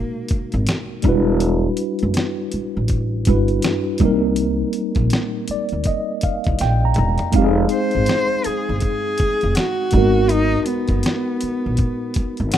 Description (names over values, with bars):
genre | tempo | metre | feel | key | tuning
R&B, neo-soul | 81 BPM | 4/4 | swing 62% on 16ths | unclear | A4 = 440 Hz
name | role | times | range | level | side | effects
dark cello | melody | 0.0-1.0, 7.7-12.6 s | Bb3 to C5 | -22 LUFS | equal | none
mellow tine electric piano | accompaniment | 0.0-12.6 s | Cb3 to Bb5 | -21 LUFS | equal | medium stereo tremolo
upright bass | bass | 0.3-12.5 s | E1 to D2 | -20 LUFS | equal | none
dusty soul sampler-style drum kit | drums | 0.3-12.6 s | hi-hat, kick drum, snare drum, toms | -22 LUFS | equal | none
room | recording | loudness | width
digital ambience | rough home demo mix | -17 LUFS | side -10 dB against mid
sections
0.0-12.6 A section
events
tine electric piano fill 5.1-7.3, 12.2-12.6; drum fill 6.6-7.3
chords
0.0 Abm9; 1.0 Em9; 4.0 Cm9; 7.3 Fm7; 9.9 Abm9